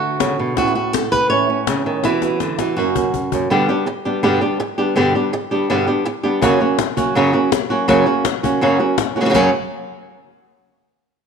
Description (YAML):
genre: flamenco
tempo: 164 BPM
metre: 4/4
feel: straight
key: F# phrygian dominant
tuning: A4 = 440 Hz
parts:
  - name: flamenco guitar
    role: melody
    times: 0.0-9.5 s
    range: F#2 to C#5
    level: -16 LUFS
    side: equal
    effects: none
  - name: flamenco guitar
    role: stabs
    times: 0.0-9.5 s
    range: E2 to G4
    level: -24 LUFS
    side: right 8 dB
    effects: none
  - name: cajon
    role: percussion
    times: 0.2-3.4, 6.4-9.4 s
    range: none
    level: -23 LUFS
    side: left 13 dB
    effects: none
room: moderate echo chamber reverb, RT60 1.6 s, small room ambience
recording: 1960s-style stereo with parts hard left and right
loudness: -15 LUFS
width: side -6 dB against mid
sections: 0.0-3.5 A section; 3.5-9.3 B section; 9.3-10.8 C section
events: drum fill 2.0-3.5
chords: 0.0 D; 0.6 A; 2.0 Emadd9; 2.8 F#; 3.5 G; 6.4 F#